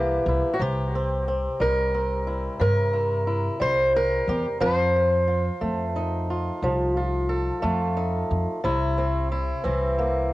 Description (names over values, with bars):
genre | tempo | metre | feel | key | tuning
acoustic country blues, solo or duo | 60 BPM (dotted quarters) | 12/8 | straight | C mixolydian | A4 = 445 Hz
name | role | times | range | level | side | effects
fingerpicked swing-style acoustic guitar | melody | 0.0-10.3 s | C3 to C5 | -23 LUFS | equal | cassette tape, tape echo
upright bass | bass | 0.0-10.3 s | C2 to G2 | -26 LUFS | equal | none
room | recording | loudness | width
light reverb | home recording on cassette | -22 LUFS | side -17 dB against mid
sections
0.0-10.3 A section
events
none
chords
0.0 C7; 4.6 F7; 8.6 C7